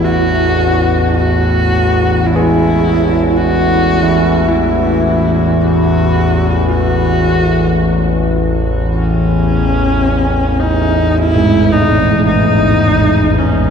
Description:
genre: dark ambient drone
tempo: 54 BPM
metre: 4/4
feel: straight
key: unclear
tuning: A4 = 440 Hz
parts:
  - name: clear horsehead fiddle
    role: melody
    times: 0.0-13.7 s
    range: C#4 to F#4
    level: -15 LUFS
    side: equal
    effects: tape echo
  - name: analog drone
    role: drone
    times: 0.0-13.7 s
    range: A1 to E2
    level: -13 LUFS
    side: left 1 dB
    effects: chorus
  - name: carillon bells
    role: arpeggios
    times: 2.4-13.7 s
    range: G#2 to G#4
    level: -17 LUFS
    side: right 2 dB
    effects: tape echo
room: wet cathedral reverb, RT60 6.0 s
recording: dark, warm production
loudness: -10 LUFS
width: side -7 dB against mid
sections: 0.0-13.7 A section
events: none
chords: 0.0 F#m

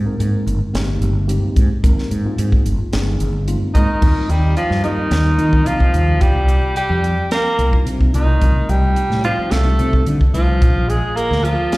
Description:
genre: electric jazz fusion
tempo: 109 BPM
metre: 4/4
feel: straight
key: Eb major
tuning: A4 = 438 Hz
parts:
  - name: mellow tine electric piano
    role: accompaniment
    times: 0.0-10.6 s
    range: G3 to Bb4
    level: -26 LUFS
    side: equal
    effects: medium stereo tremolo, slapback echo
  - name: mellow fretless electric bass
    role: bass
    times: 0.0-11.6 s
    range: G1 to Eb3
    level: -17 LUFS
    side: equal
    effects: lush chorus
  - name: tight funk drum kit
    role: drums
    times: 0.2-11.8 s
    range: crash cymbal, hi-hat, kick drum, snare drum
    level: -17 LUFS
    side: equal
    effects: none
  - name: breathy alto saxophone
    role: melody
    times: 3.7-11.8 s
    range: Eb4 to Bb4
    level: -20 LUFS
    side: right 1 dB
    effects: slapback echo
  - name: warm tenor saxophone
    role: second line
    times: 3.8-11.8 s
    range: Eb3 to Bb3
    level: -24 LUFS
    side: left 1 dB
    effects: slapback echo, analog delay
room: small room ambience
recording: live gig heard through the venue's PA, recital hall reverb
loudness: -14 LUFS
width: side -20 dB against mid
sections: 0.0-4.0 A section; 4.0-11.8 B section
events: none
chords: 0.0 Abmaj9; 4.0 Eb6; 6.2 Cm11; 8.1 F7/C; 10.6 Bb7

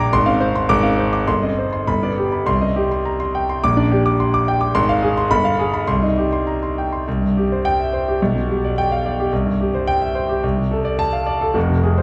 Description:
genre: classical, virtuoso piano study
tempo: 99-110 BPM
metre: 2/4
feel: rubato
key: C minor, C major from 7.1 s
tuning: A4 = 440 Hz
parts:
  - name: warm concert grand piano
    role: solo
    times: 0.0-12.0 s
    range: F1 to D6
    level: -19 LUFS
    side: equal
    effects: none
room: wet recital hall reverb, RT60 1.6 s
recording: small room ambience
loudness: -19 LUFS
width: mono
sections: 0.0-7.1 A section; 7.1-12.0 B section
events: none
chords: 0.1 Fm/Ab; 0.7 Dm7b5/Ab; 1.3 Cm/G; 1.9 G; 2.5 Cm; 3.6 Gm/Bb; 4.7 Fm/Ab; 5.3 G7b9; 5.9 Cm; 7.1 C; 8.2 G7/B; 9.3 C; 10.4 Dm7/C

